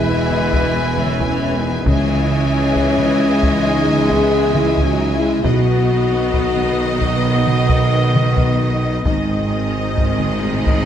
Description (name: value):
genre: cinematic, epic orchestral film score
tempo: 67 BPM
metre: 4/4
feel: straight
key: C# minor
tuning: A4 = 440 Hz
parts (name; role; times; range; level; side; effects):
- warm symphonic violin section; melody; 0.0-10.9 s; D#5 to G#5; -28 LUFS; left 4 dB; none
- warm studio violin section; second line; 0.0-10.9 s; B4 to E5; -28 LUFS; left 3 dB; none
- rich symphonic viola section; accompaniment; 0.0-10.9 s; D#3 to B3; -26 LUFS; right 1 dB; none
- mellow French horn section; sustained chords; 0.0-10.9 s; B3 to G#4; -21 LUFS; left 4 dB; none
- rich symphonic string section; sustained chords; 0.0-10.9 s; E3 to D#5; -26 LUFS; left 2 dB; none
- warm trombone section; sustained chords; 0.0-10.9 s; D#3 to B3; -28 LUFS; right 3 dB; none
- clear trumpet; stabs; 0.0-10.9 s; B4 to D#5; -26 LUFS; right 1 dB; none
- mellow tuba; bass; 0.0-10.9 s; E1 to C#2; -24 LUFS; right 3 dB; none
- rich symphonic cello section; bass; 0.0-10.9 s; E2 to C#3; -24 LUFS; right 1 dB; none
- warm symphonic double bass section; bass; 0.0-10.9 s; E1 to C#2; -23 LUFS; right 3 dB; none
- taiko ensemble; drums; 0.3-10.9 s; none; -22 LUFS; equal; none
- timpani; percussion; 1.9-3.2, 9.1-10.9 s; G#2 to C#3; -26 LUFS; left 1 dB; none
- cymbal swell; sound effects; 10.1-10.9 s; none; -33 LUFS; equal; none
room: moderate scoring stage reverb, RT60 2.1 s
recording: none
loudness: -14 LUFS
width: side -9 dB against mid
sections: 0.0-10.9 A section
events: timpani fill 9.1-10.9; cymbal swell 10.1-10.9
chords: 0.0 E; 1.9 C#madd9; 5.5 B; 9.1 G#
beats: 0.09 0.98 | 1.87 2.77 3.66 4.55 | 5.45 6.34 7.25 8.15 | 9.06 9.98